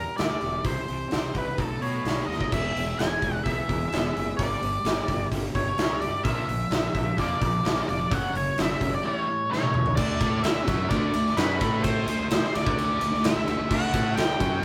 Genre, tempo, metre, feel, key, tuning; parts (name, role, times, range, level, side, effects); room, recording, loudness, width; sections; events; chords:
quiet-loud alternative rock; 129 BPM; 4/4; straight; D major from 10.0 s; A4 = 441 Hz
octave-fuzz lead guitar; melody; 0.0-14.6 s; A4 to G#5; -31 LUFS; equal; distortion
mellow electric guitar; arpeggios; 0.0-10.0 s; E2 to G#4; -39 LUFS; equal
fuzz fingered electric bass; bass; 0.0-14.6 s; E1 to B2; -33 LUFS; equal; overdrive
big rock drum kit; drums; 0.2-14.5 s; crash cymbal, hi-hat, kick drum, ride cymbal, snare drum, toms; -29 LUFS; equal
overdriven electric guitar; riff; 2.5-14.6 s; F#2 to A4; -38 LUFS; equal
tight distorted guitar; riff; 6.2-14.6 s; F#2 to A4; -36 LUFS; equal; distortion
light reverb; rough rehearsal-room recording; -26 LUFS; mono
0.0-2.5 A section; 2.5-10.0 B section; 10.0-14.6 C section
drum fill 2.3, 9.5-10.0
0.0 Gm; 0.7 C; 1.6 B7; 2.5 E; 4.4 Gm; 6.2 Bb; 8.1 F#; 9.0 A7; 10.0 D; 11.6 A5; 12.1 D